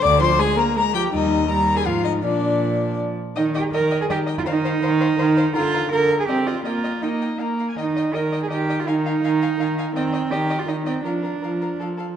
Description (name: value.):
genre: quick classical-period movement for string quartet.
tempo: 164 BPM.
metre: 3/4.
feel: straight.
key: Eb major.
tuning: A4 = 440 Hz.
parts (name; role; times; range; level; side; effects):
warm violin; melody; 0.0-12.1 s; D5 to D6; -27 LUFS; left 9 dB; none.
dark violin; second line; 0.0-12.1 s; D4 to Bb5; -26 LUFS; left 3 dB; none.
warm viola; accompaniment; 0.0-12.1 s; D3 to C4; -23 LUFS; right 1 dB; none.
rich cello; bass; 0.0-11.8 s; D2 to Bb4; -23 LUFS; right 4 dB; none.
room: moderate scoring stage reverb, RT60 1.6 s.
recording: dark, warm production.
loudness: -19 LUFS.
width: side -9 dB against mid.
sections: 0.0-3.4 A section; 3.4-12.2 B section.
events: none.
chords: 0.0 Bb7/D; 1.1 Eb; 1.9 Fm/Ab; 2.2 Bb; 3.4 Eb; 4.5 F5/Eb; 5.6 Bb/D; 6.3 Cm; 6.7 Eb/Bb; 7.4 Bb5; 7.8 Eb; 8.9 Fm7/Eb; 10.0 Cm/Eb; 11.1 Bb/F; 11.8 F.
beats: | 0.04 0.40 0.76 | 1.12 1.49 1.86 | 2.24 2.62 2.99 | 3.37 3.74 4.11 | 4.47 4.83 5.20 | 5.56 5.92 6.28 | 6.65 7.03 7.40 | 7.78 8.14 8.51 | 8.87 9.23 9.59 | 9.95 10.31 10.68 | 11.05 11.43 11.81.